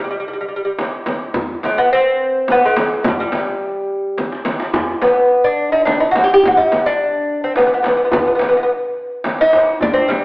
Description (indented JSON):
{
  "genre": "Persian modal ensemble",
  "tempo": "106 BPM",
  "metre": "3/4",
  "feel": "straight",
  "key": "G dastgah chahargah",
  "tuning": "A4 = 441 Hz",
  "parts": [
    { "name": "lute", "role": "melody", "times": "0.0-10.2 s", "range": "F#3 to G4", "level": "-14 LUFS", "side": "equal", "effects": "none" },
    { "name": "frame drum", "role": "percussion", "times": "0.8-10.2 s", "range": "none", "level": "-24 LUFS", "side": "equal", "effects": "none" },
    { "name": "tombak", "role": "percussion", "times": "0.8-10.2 s", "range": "none", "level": "-22 LUFS", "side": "equal", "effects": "none" }
  ],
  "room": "wet stone room reverb, RT60 1.3 s",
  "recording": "band playing live in one room, AM radio sound",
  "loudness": "-13 LUFS",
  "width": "side -24 dB against mid",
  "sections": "0.0-10.2 A section",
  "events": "drum fill 4.2-4.7",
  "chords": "none",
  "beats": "0.21 0.78 | 1.35 1.91 2.48 | 3.04 3.61 4.17 | 4.74 5.31 5.87 | 6.44 7.00 7.57 | 8.13 8.70 9.26 | 9.83"
}